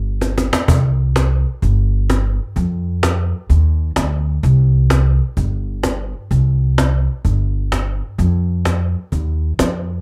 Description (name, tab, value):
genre	country, western swing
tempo	128 BPM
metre	4/4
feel	swing 66% on 8ths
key	unclear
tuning	A4 = 443 Hz
part	upright bass	bass	0.0-10.0 s	G1 to F2	-18 LUFS	equal	none
part	cajon	drums	0.2-9.7 s	none	-22 LUFS	equal	none
room	light reverb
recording	none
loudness	-17 LUFS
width	mono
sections	0.7-10.0 A section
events	drum fill 0.2-0.7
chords	none